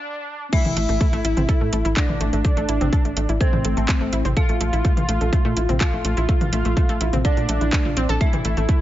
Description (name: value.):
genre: melodic techno.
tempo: 125 BPM.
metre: 4/4.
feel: straight.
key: A phrygian.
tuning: A4 = 440 Hz.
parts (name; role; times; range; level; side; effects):
analog synth brass; melody; 0.0-8.8 s; C4 to F4; -26 LUFS; equal; chorus, cassette tape, digital delay.
dark detuned synth bell; second line; 0.5-8.8 s; C5 to F5; -32 LUFS; right 2 dB; chorus, phaser, sidechain pumping, digital delay.
analog pluck; arpeggios; 0.5-8.8 s; E3 to A4; -27 LUFS; equal; chorus, cassette tape, sidechain pumping, digital delay.
electronic kick drum; drums; 0.5-8.8 s; none; -19 LUFS; equal; high-pass filter on kick, high-pass filter on room.
house drum kit; drums; 0.5-8.8 s; crash cymbal, handclaps, hi-hat, toms; -28 LUFS; equal; none.
tight sequencer bass; bass; 0.7-8.7 s; A1 to Bb2; -23 LUFS; equal; sidechain pumping.
room: digital ambience.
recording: high-pass filter, nothing above 7.5 kHz.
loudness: -18 LUFS.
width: side -14 dB against mid.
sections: 0.5-8.8 A section.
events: break 0.0-0.5; drop 0.5-8.8.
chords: 0.0 N.C.; 0.5 Am; 4.4 Bb; 8.2 A5.